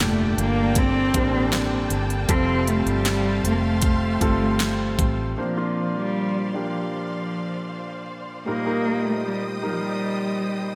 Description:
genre	pop ballad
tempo	78 BPM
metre	4/4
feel	straight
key	Bb major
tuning	A4 = 440 Hz
part	dark cello	melody	0.0-10.8 s	F3 to C4	-27 LUFS	equal	delay
part	clear concert grand piano	accompaniment	0.0-10.8 s	G2 to C5	-31 LUFS	equal	slapback echo
part	warm symphonic string section	sustained chords	0.0-10.8 s	C5 to Eb6	-35 LUFS	equal	none
part	picked steel-string acoustic guitar	arpeggios	0.0-6.0 s	G2 to A4	-34 LUFS	equal	none
part	vintage muted fingered electric bass	bass	0.0-5.3 s	F1 to A1	-28 LUFS	equal	none
part	pop drum kit	drums	0.0-5.2 s	hi-hat, kick drum, snare drum	-27 LUFS	equal	none
room	moderate concert hall reverb, RT60 2.1 s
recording	big arena sound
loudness	-23 LUFS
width	mono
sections	0.0-5.4 A section; 5.4-10.8 B section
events	none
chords	0.0 Gmadd9; 2.3 Fadd9; 5.4 Bbadd9; 8.5 Eb

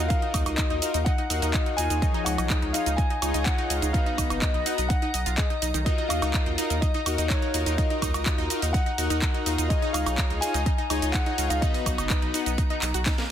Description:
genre	progressive house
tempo	125 BPM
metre	4/4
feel	straight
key	Eb minor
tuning	A4 = 440 Hz
part	dark concert grand piano	melody	0.0-13.0 s	Db5 to Ab5	-32 LUFS	left 2 dB	vintage 12-bit sampler grit, sidechain pumping, ping-pong delay
part	wide unison pluck	arpeggios	0.0-13.2 s	D#3 to D#6	-32 LUFS	right 1 dB	cassette tape, sidechain pumping, ping-pong delay
part	soft supersaw	stabs	0.0-12.5 s	F3 to Ab5	-31 LUFS	left 4 dB	sidechain pumping, ping-pong delay
part	saturated sub bass	bass	0.0-13.0 s	F#1 to Eb2	-29 LUFS	equal	tube saturation, sidechain pumping
part	drifting glass-harmonics texture	texture	0.0-13.3 s	Bb5	-40 LUFS	right 4 dB	chorus, built-in reverb, sidechain pumping
part	electronic kick drum	drums	0.1-13.2 s	none	-25 LUFS	equal	none
part	house drum kit	drums	0.1-13.3 s	handclaps, hi-hat, shaker, snare drum, woodblock	-30 LUFS	right 2 dB	none
room	little or no reverb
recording	dense, heavily limited modern master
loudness	-22 LUFS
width	side -10 dB against mid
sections	0.0-13.3 A section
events	drum fill 13.1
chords	0.0 Ebmadd9; 2.0 Dbadd9; 3.9 B; 5.9 Ebmadd9; 9.7 Dbadd9; 11.6 B

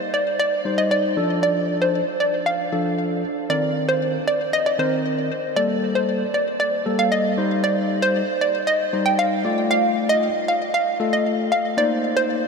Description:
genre	pop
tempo	116 BPM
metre	4/4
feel	straight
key	unclear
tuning	A4 = 440 Hz
part	hollow square pluck	melody	0.0-12.5 s	C5 to G5	-20 LUFS	right 1 dB	chorus, ping-pong delay
part	barky tine electric piano	accompaniment	0.6-12.4 s	Eb3 to D5	-24 LUFS	left 2 dB	lush chorus
room	wet huge ambient reverb, RT60 8.2 s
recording	dreamy mix soaked in reverb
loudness	-18 LUFS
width	side -5 dB against mid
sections	0.0-12.5 A section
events	none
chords	0.0 Eb6; 1.2 Dm; 3.5 Cm7; 5.6 Gmadd9; 7.4 Eb6; 9.4 Dm; 11.8 Cm7

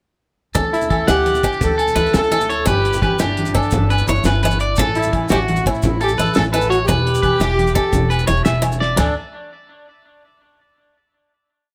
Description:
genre	highlife guitar band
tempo	114 BPM (dotted quarters)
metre	12/8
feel	straight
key	D major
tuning	A4 = 440 Hz
part	electric guitar at the edge of break-up	arpeggios	0.5-9.1 s	D4 to F#5	-24 LUFS	equal	tape echo
part	congas	percussion	0.5-9.1 s	none	-27 LUFS	equal	none
part	maracas	percussion	0.5-9.1 s	none	-37 LUFS	equal	none
part	picked swing-style acoustic guitar	accompaniment	0.6-9.1 s	C#4 to E4	-28 LUFS	equal	none
part	upright bass	bass	0.6-9.1 s	E1 to D3	-23 LUFS	equal	none
part	cloth-damped thuddy drum kit	drums	0.6-9.1 s	china cymbal, hi-hat, kick drum, snare drum, toms	-24 LUFS	equal	none
part	agogo bells	percussion	0.6-9.1 s	none	-30 LUFS	equal	none
part	warm horn section	melody	0.7-9.1 s	D4 to B4	-22 LUFS	equal	none
room	little or no reverb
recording	none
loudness	-17 LUFS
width	mono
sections	0.6-9.0 A section; 9.0-11.1 final chord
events	drum fill 8.8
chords	0.6 Dsus2; 2.7 G; 4.8 A; 6.9 Em; 9.0 D5

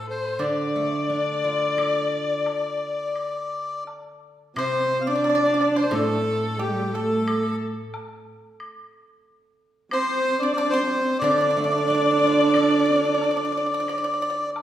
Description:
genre	chinese traditional, Chinese chamber ensemble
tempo	89 BPM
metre	4/4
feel	rubato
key	D yu mode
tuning	A4 = 440 Hz
part	melodica	melody	0.0-14.5 s	G4 to F5	-26 LUFS	left 2 dB	none
part	clear erhu	second line	0.0-14.6 s	G4 to D5	-26 LUFS	left 3 dB	none
part	pipa	second line	0.0-14.4 s	G4 to D5	-30 LUFS	right 4 dB	none
part	steel-string zither	accompaniment	0.0-13.9 s	A2 to A4	-29 LUFS	right 2 dB	none
part	woodblock	percussion	0.4-14.6 s	none	-36 LUFS	equal	none
part	dark horsehead fiddle	second line	4.6-14.6 s	G3 to D4	-25 LUFS	right 3 dB	none
room	wet recital hall reverb, RT60 1.6 s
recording	heard from further back in the room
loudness	-20 LUFS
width	side -11 dB against mid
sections	0.0-4.6 A section; 4.6-14.6 B section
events	none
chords	none

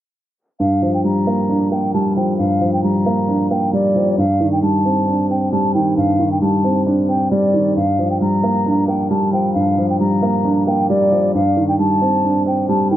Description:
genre	hip hop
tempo	134 BPM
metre	4/4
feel	half-time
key	G minor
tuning	A4 = 441 Hz
part	breathy silver concert flute	melody	0.6-13.0 s	D5 to Bb5	-20 LUFS	equal	tape echo
part	dark baby grand piano	accompaniment	0.6-13.0 s	G2 to D4	-16 LUFS	right 1 dB	none
room	light reverb, small room reverb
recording	low-pass filter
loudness	-14 LUFS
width	side -12 dB against mid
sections	0.6-13.0 A section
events	none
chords	0.6 Gm7; 4.2 Cmadd9/G; 7.8 Gm7; 11.3 Cmadd9/G

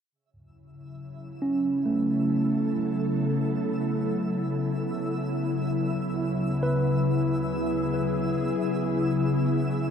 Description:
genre	ambient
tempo	free time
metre	none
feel	none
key	F# minor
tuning	A4 = 439 Hz
part	ethereal airy pad	sustained chords	0.8-9.9 s	D2 to A4	-26 LUFS	left 1 dB	ensemble chorus, built-in reverb
part	twinkling granular texture	texture	1.0-9.9 s	E5 to E6	-40 LUFS	right 1 dB	built-in reverb
part	overdriven tine electric piano	arpeggios	1.4-9.1 s	A3 to B4	-29 LUFS	right 2 dB	ping-pong delay
room	wet cathedral reverb, RT60 6.0 s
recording	dark, warm production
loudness	-24 LUFS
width	side -7 dB against mid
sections	0.1-9.9 A section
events	fade-in on synth texture 0.1-9.9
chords	0.1 F#m7; 5.3 Dmaj9#11; 7.9 Eadd9

